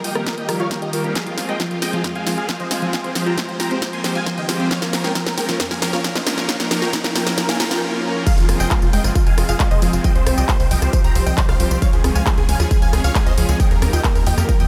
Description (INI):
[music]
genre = uplifting trance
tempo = 135 BPM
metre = 4/4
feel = straight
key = F minor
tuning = A4 = 440 Hz
[part]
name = big supersaw lead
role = melody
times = 0.0-14.7 s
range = F4 to C6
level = -28 LUFS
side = equal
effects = phaser, sidechain pumping, low-pass filter, delay
[part]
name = lush unison pad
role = sustained chords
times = 0.0-14.7 s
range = Eb3 to Bb4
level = -28 LUFS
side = equal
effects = chorus, sidechain pumping
[part]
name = unison pluck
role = arpeggios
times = 0.0-14.7 s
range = F2 to F4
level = -29 LUFS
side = equal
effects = ensemble chorus, sidechain pumping, delay
[part]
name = big-room dance drum kit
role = drums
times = 0.0-14.7 s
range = crash cymbal, handclaps, hi-hat, rim click, snare drum, tambourine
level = -26 LUFS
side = equal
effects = none
[part]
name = electronic kick drum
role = drums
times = 0.3-14.6 s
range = none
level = -20 LUFS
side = equal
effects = high-pass filter on kick
[part]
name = riser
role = sound effects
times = 3.5-7.8 s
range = none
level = -35 LUFS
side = equal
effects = none
[part]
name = analog pluck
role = second line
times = 8.3-14.7 s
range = F4 to Bb5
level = -32 LUFS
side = equal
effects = chorus, sidechain pumping, delay
[part]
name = tight sequencer bass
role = bass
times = 8.4-14.7 s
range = F1 to F2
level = -22 LUFS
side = equal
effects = tube saturation, sidechain pumping
[sound]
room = moderate huge ambient reverb, RT60 6.5 s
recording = dreamy mix soaked in reverb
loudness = -19 LUFS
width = mono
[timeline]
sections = 0.0-8.3 A section; 8.3-14.7 B section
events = build-up 0.0-8.3; drum fill 0.0-7.8; filter sweep on synth arpeggio sound 0.0-8.3; drop 8.3-14.7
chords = 0.0 Eb; 1.2 Fm; 4.7 Bbm; 8.3 Fm; 10.0 Csus4; 11.8 Db; 13.6 Eb